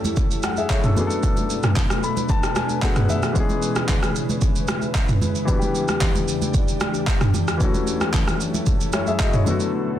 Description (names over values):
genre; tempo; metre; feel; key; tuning
amapiano; 113 BPM; 4/4; straight; unclear; A4 = 443 Hz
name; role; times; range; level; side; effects
warm baby grand piano; accompaniment; 0.0-10.0 s; D3 to B5; -25 LUFS; left 4 dB; none
glassy FM pad; sustained chords; 0.0-10.0 s; E2 to B4; -28 LUFS; equal; ensemble chorus, built-in reverb, sidechain pumping
deep house drum kit; drums; 0.0-9.7 s; handclaps, kick drum, rim click, shaker, toms; -21 LUFS; equal; none
congas; percussion; 0.0-9.6 s; none; -29 LUFS; right 2 dB; none
room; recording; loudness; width
little or no reverb; dense, heavily limited modern master; -18 LUFS; side -11 dB against mid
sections
0.0-10.0 A section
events
grand piano fill 1.8-3.4; break 9.7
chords
0.0 F#m7; 1.0 Bm7; 3.4 C#m7; 5.5 Em7; 7.6 F#m7; 9.5 Bm7